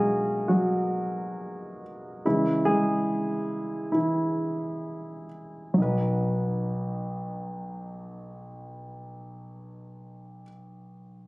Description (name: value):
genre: pop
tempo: free time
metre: none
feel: none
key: B major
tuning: A4 = 435 Hz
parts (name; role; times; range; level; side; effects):
- warm concert grand piano; accompaniment; 0.0-11.3 s; B1 to B4; -26 LUFS; equal; none
room: light reverb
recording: recorded on a phone in the room, club reverb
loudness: -24 LUFS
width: side -22 dB against mid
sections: 0.0-5.8 A section; 5.8-9.7 B section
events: slowing down 0.0-5.8; grand piano solo 0.0-5.8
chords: 0.0 B; 2.3 C#m; 5.8 B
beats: free time